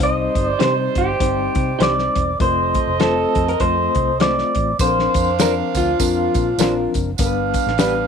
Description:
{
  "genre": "uptempo 1960s-style soul",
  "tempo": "100 BPM",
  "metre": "4/4",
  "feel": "swing 60% on 8ths",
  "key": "Bb major",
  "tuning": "A4 = 439 Hz",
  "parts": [
    { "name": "electric guitar through a small old amp", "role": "melody", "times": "0.0-6.9 s", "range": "F4 to Eb5", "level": "-20 LUFS", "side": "equal", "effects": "none" },
    { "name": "clear horn section", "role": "second line", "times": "0.0-8.1 s", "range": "G3 to F5", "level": "-25 LUFS", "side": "right 14 dB", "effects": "none" },
    { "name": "barky reed electric piano", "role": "accompaniment", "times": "0.0-8.1 s", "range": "F3 to C5", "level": "-23 LUFS", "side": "left 10 dB", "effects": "overdrive, fast tremolo" },
    { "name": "vintage muted fingered electric bass", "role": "bass", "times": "0.0-8.1 s", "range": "E1 to C3", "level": "-25 LUFS", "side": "right 2 dB", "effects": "none" },
    { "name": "warm soul drum kit", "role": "drums", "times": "0.0-8.0 s", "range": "hi-hat, kick drum, snare drum", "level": "-22 LUFS", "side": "left 1 dB", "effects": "none" },
    { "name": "electric guitar through a small old amp", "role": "stabs", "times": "0.6-7.9 s", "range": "D4 to C5", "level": "-26 LUFS", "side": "right 11 dB", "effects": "tube saturation" },
    { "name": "tambourine", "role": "percussion", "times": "4.8-8.0 s", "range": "none", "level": "-29 LUFS", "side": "right 16 dB", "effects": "none" }
  ],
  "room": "moderate spring reverb, RT60 2.0 s, small room ambience",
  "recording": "1960s-style stereo with parts hard left and right",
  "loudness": "-16 LUFS",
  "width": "side -6 dB against mid",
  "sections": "0.0-8.1 A section",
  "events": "none",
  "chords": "0.0 Cm; 2.4 F; 4.8 Bbadd9; 7.2 G"
}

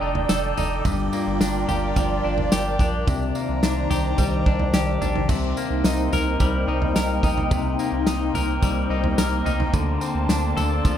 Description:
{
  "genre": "dream pop",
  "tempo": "108 BPM",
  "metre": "4/4",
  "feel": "straight",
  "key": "C dorian",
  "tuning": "A4 = 439 Hz",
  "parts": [
    { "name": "phased analog pad", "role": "sustained chords", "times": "0.0-11.0 s", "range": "Eb3 to Bb5", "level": "-26 LUFS", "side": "right 1 dB", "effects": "phaser, chorus" },
    { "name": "clean electric guitar", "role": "arpeggios", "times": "0.0-11.0 s", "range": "G2 to Bb4", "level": "-25 LUFS", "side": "left 5 dB", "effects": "wide subtle chorus, dub echo" },
    { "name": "saturated sub bass", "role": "bass", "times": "0.0-11.0 s", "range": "F1 to D2", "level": "-26 LUFS", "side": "right 1 dB", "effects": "none" },
    { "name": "loose indie drum kit", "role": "drums", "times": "0.2-11.0 s", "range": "crash cymbal, kick drum, snare drum, tambourine, toms", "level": "-24 LUFS", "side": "right 1 dB", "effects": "dub echo" }
  ],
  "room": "light reverb, small room ambience",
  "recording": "echo-heavy mix",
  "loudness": "-20 LUFS",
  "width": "side -10 dB against mid",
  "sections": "0.0-5.3 A section; 5.3-11.0 B section",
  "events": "none",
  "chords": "0.0 F13; 0.8 Gm7; 3.1 Cm9; 5.3 Cm7; 9.7 Bbmaj9"
}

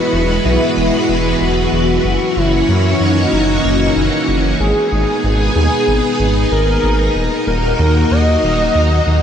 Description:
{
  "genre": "synthwave",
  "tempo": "94 BPM",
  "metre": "4/4",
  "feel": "straight",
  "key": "G# minor",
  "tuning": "A4 = 440 Hz",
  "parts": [
    { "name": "wide unison lead", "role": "melody", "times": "0.0-9.2 s", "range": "D#4 to D#5", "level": "-17 LUFS", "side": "equal", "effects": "ping-pong delay" },
    { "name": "string machine, full ensemble", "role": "sustained chords", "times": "0.0-9.2 s", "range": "E3 to C#5", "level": "-16 LUFS", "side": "equal", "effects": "ensemble chorus, vintage 12-bit sampler grit" },
    { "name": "dark detuned saw bass", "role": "bass", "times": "0.1-9.2 s", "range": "D#1 to F#2", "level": "-16 LUFS", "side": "equal", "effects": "none" }
  ],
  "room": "moderate huge ambient reverb, RT60 8.2 s",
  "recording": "dreamy mix soaked in reverb",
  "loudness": "-12 LUFS",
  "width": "side -8 dB against mid",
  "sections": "0.0-9.2 A section",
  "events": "none",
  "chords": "0.0 Eadd9; 2.0 F#7; 4.6 G#m; 7.2 D#m"
}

